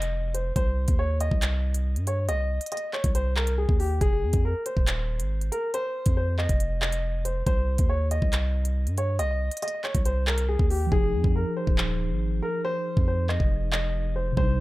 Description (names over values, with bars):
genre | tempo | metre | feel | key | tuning
hip hop, drill | 139 BPM | 4/4 | half-time | F minor | A4 = 435 Hz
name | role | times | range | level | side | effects
dark grand piano | melody | 0.0-14.6 s | G4 to Eb5 | -30 LUFS | left 1 dB | slapback echo
long sustained 808-style bass | bass | 0.0-14.6 s | Eb1 to G2 | -26 LUFS | equal | none
drill drum kit | drums | 0.0-14.5 s | handclaps, hi-hat, kick drum, rim click | -26 LUFS | equal | none
downlifter | sound effects | 0.1-0.6 s | none | -58 LUFS | equal | none
mellow tine electric piano | accompaniment | 10.9-14.6 s | C3 to Ab4 | -31 LUFS | equal | medium stereo tremolo
room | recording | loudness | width
digital ambience | none | -23 LUFS | side -18 dB against mid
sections
0.0-14.6 A section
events
hi-hats muted 10.9-14.6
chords
0.0 F7(no3); 0.6 Cm; 4.0 F7(no3); 7.5 Cm; 10.9 Fm7